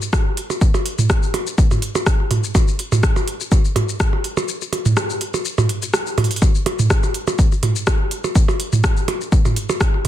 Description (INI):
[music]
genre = techno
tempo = 124 BPM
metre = 4/4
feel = swing 54% on 16ths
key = none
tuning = none
[part]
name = garage drum kit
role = drums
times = 0.0-10.1 s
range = hi-hat, rim click, shaker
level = -24 LUFS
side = left 1 dB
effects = soft clipping on snare
[part]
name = electronic kick drum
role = drums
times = 0.1-9.9 s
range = none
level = -16 LUFS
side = equal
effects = none
[part]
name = electronic percussion blips and toms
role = percussion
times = 0.1-10.1 s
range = none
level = -20 LUFS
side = right 2 dB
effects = ping-pong delay
[sound]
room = little or no reverb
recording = dense, heavily limited modern master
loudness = -16 LUFS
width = side -12 dB against mid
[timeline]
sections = 0.0-10.1 A section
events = break 4.5-6.4; drum fill 6.2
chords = none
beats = 0.13 | 0.61 1.10 1.58 2.06 | 2.55 3.03 3.52 4.00 | 4.48 4.97 5.45 5.93 | 6.42 6.90 7.39 7.87 | 8.36 8.84 9.32 9.81